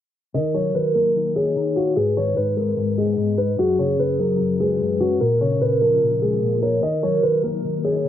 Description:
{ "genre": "hip hop", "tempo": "148 BPM", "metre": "4/4", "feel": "half-time", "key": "Eb minor", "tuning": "A4 = 440 Hz", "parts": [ { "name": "dark grand piano", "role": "melody", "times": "0.3-8.1 s", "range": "Gb4 to Eb5", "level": "-21 LUFS", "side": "left 1 dB", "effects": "low-pass filter, slapback echo" }, { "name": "hollow clarinet-like synth lead", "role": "second line", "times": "0.3-8.1 s", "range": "Ab4 to Eb5", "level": "-24 LUFS", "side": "right 4 dB", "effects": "chorus, slapback echo" }, { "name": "mellow electric guitar", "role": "accompaniment", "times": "0.3-8.1 s", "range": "Gb2 to F4", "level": "-23 LUFS", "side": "left 4 dB", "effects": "ensemble chorus, low-pass filter" } ], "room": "moderate echo chamber reverb, RT60 1.6 s", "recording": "low-pass filter", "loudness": "-18 LUFS", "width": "side -10 dB against mid", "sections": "0.3-8.1 A section", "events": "filter sweep 0.3-8.1", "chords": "0.3 Ebmadd9; 2.0 Abm; 3.6 Gbsus2; 5.2 Bbm7; 6.8 Ebm" }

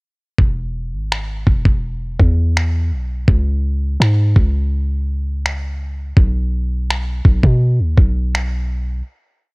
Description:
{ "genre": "contemporary R&B", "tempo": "83 BPM", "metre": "4/4", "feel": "straight", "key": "E major", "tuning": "A4 = 440 Hz", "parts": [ { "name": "warm 808-style bass", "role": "bass", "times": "0.4-9.0 s", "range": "E1 to B2", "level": "-17 LUFS", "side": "equal", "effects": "none" }, { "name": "dusty soul sampler-style drum kit", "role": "drums", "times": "0.4-8.5 s", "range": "finger snaps, kick drum", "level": "-14 LUFS", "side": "equal", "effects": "cassette tape" } ], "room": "little or no reverb", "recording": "home recording on cassette", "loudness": "-15 LUFS", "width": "side -33 dB against mid", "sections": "0.4-9.5 verse", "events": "break 9.1-9.5", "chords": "none" }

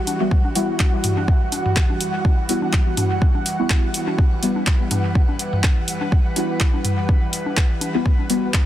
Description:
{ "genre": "dub techno", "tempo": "124 BPM", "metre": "4/4", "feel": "swing 55% on 16ths", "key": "E minor", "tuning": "A4 = 442 Hz", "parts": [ { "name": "airy breathy pad", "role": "sustained chords", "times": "0.0-8.7 s", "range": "E3 to B4", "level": "-27 LUFS", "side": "equal", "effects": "chorus, sidechain pumping" }, { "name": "flickering grainy texture", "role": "texture", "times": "0.0-8.7 s", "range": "F#5", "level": "-30 LUFS", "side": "right 1 dB", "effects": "built-in reverb, sidechain pumping" }, { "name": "deep house drum kit", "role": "drums", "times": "0.1-8.6 s", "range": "handclaps, hi-hat", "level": "-26 LUFS", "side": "equal", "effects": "dub echo" }, { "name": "electronic congas and toms", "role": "percussion", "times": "0.1-8.6 s", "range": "none", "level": "-26 LUFS", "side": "left 1 dB", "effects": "sidechain pumping on perc, sidechain pumping on toms" }, { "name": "deep mellow chord stab", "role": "stabs", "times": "0.2-8.5 s", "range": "G3 to F#4", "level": "-25 LUFS", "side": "left 1 dB", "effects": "chorus, phaser, vintage 12-bit sampler grit, sidechain pumping, dub echo" }, { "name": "electronic kick drum", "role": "drums", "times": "0.3-8.6 s", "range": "none", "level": "-17 LUFS", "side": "equal", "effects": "none" } ], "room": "digital ambience", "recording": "dense, heavily limited modern master", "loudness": "-17 LUFS", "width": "side -12 dB against mid", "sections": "0.0-8.7 A section", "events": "none", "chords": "0.0 Emadd9" }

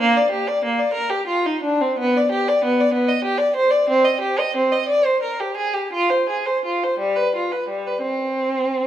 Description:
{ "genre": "classical, baroque-style suite movement for unaccompanied violin", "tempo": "55-63 BPM (dotted quarters)", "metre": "6/8", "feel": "rubato", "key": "unclear", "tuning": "A4 = 440 Hz", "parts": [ { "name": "warm violin", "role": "solo", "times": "0.0-8.9 s", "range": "G3 to Eb5", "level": "-18 LUFS", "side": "equal", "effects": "none" } ], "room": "wet recital hall reverb, RT60 1.7 s", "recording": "none", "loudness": "-18 LUFS", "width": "side -11 dB against mid", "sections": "0.0-8.9 A section", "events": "none", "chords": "none" }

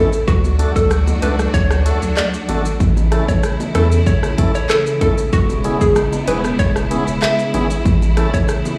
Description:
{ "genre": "dancehall", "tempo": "95 BPM", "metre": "4/4", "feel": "straight", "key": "A major", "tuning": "A4 = 441 Hz", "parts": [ { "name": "hollow square pluck", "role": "melody", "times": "0.0-8.6 s", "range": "F#4 to E5", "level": "-23 LUFS", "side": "equal", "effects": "chorus, tape echo" }, { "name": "tonewheel organ", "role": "accompaniment", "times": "0.0-8.3 s", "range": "A3 to A4", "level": "-27 LUFS", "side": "equal", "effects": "overdrive" }, { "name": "clear studio string section", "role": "sustained chords", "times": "0.0-8.8 s", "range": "C#3 to F#4", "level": "-25 LUFS", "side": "equal", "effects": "sidechain pumping" }, { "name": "pop drum kit", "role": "drums", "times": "0.1-8.8 s", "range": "handclaps, hi-hat, kick drum, rim click, shaker", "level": "-20 LUFS", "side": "equal", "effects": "none" }, { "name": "saturated sub bass", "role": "bass", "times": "0.3-8.5 s", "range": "E1 to E2", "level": "-20 LUFS", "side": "equal", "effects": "none" }, { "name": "bongos", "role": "percussion", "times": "0.4-8.8 s", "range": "none", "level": "-30 LUFS", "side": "equal", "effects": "none" } ], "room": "light reverb", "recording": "played on a big sound system in a bare room, large studio reverb, studio reverb", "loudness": "-16 LUFS", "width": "mono", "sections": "0.0-8.8 A section", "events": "none", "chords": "0.3 D; 2.8 A; 5.3 E6; 7.9 A" }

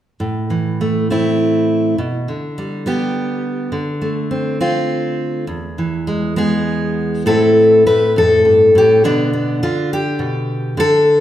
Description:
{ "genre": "folk, solo fingerstyle acoustic guitar", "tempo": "68 BPM (dotted quarters)", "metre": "6/8", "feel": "rubato", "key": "A minor", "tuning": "A4 = 440 Hz", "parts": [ { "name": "fingerpicked steel-string acoustic guitar", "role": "solo", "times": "0.2-11.2 s", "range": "E2 to B4", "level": "-14 LUFS", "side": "equal", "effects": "none" } ], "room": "wet recital hall reverb, RT60 1.4 s", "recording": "none", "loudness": "-14 LUFS", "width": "side -12 dB against mid", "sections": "0.2-7.3 A section; 7.3-11.2 B section", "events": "none", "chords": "0.2 Am; 2.0 G/B; 3.7 Dm7; 5.5 E; 7.3 Am; 9.0 G/B" }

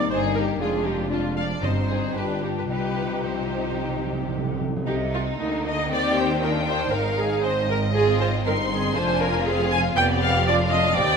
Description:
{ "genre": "quick classical-period movement for symphony orchestra", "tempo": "109-122 BPM", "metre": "4/4", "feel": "rubato", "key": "C minor", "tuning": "A4 = 440 Hz", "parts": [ { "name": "warm studio violin section", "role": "second line", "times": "0.0-11.2 s", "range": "Bb3 to G4", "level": "-28 LUFS", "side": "left 4 dB", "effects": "none" }, { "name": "rich studio viola section", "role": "accompaniment", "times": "0.0-11.2 s", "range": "Eb4 to Ab5", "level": "-25 LUFS", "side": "right 2 dB", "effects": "none" }, { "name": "dark French horn section", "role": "sustained chords", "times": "0.0-4.6 s", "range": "G3 to F4", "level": "-30 LUFS", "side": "left 6 dB", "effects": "none" }, { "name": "clear studio cello section", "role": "bass", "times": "0.0-11.2 s", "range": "Eb2 to Eb3", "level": "-28 LUFS", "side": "right 2 dB", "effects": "none" }, { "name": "clear studio double bass section", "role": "bass", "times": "0.0-11.2 s", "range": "F1 to Eb2", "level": "-30 LUFS", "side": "right 3 dB", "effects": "none" }, { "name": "rich studio violin section", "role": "melody", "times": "0.1-11.2 s", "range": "D4 to C6", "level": "-30 LUFS", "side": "left 5 dB", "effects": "none" }, { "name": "timpani", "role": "percussion", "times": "1.6-4.8 s", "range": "G2 to C3", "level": "-30 LUFS", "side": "right 2 dB", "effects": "none" } ], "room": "moderate concert hall reverb, RT60 2.0 s", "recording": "none", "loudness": "-21 LUFS", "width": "side -6 dB against mid", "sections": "0.0-4.9 A section; 4.9-11.2 A section", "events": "timpani fill 2.7-4.9", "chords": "0.0 Eb; 0.6 Ddim/F; 1.6 Cm/G; 2.1 G7; 2.7 Cm; 5.9 Cm/Eb; 6.9 Ab; 9.0 Ddim/F; 10.0 G7/F" }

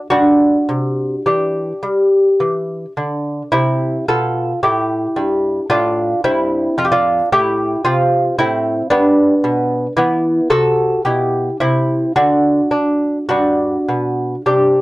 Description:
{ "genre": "classical, baroque-style dance for lute", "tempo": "51-58 BPM", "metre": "3/4", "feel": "rubato", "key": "unclear", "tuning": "A4 = 440 Hz", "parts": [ { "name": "lute", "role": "solo", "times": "0.0-14.8 s", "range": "F2 to A4", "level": "-13 LUFS", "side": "equal", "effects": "none" } ], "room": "light reverb", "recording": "dark, warm production", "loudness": "-14 LUFS", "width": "side -18 dB against mid", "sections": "0.0-14.8 A section", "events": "none", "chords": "0.1 G5; 3.5 C; 6.8 F; 8.9 G; 10.0 E5; 12.1 N.C.; 13.3 G" }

